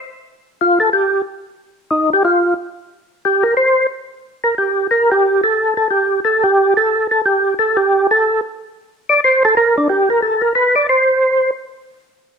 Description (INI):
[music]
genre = jazz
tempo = 180 BPM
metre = 4/4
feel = swing 64% on 8ths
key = unclear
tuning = A4 = 440 Hz
[part]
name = percussive tonewheel organ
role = solo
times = 0.6-11.5 s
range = D4 to D5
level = -13 LUFS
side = equal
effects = overdrive, chorus vibrato, slow rotary speaker
[sound]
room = moderate large studio reverb, RT60 1.2 s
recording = minimal, uncompressed stereo recording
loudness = -13 LUFS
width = side -6 dB against mid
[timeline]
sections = 0.2-12.4 A section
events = tonewheel organ solo 0.2-12.4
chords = none